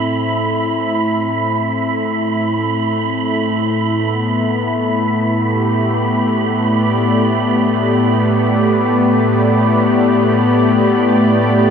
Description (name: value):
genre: ambient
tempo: free time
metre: none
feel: none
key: unclear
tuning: A4 = 440 Hz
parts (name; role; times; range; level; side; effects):
- warm analog pad; sustained chords; 0.0-11.7 s; A2 to E5; -14 LUFS; left 1 dB; chorus
- wind-like tuned noise texture; texture; 0.0-11.7 s; B5; -21 LUFS; right 5 dB; built-in reverb
room: wet cathedral reverb, RT60 5.1 s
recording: dark, warm production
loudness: -13 LUFS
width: side -7 dB against mid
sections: 0.0-11.7 A section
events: none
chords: 0.0 Am; 3.5 G/A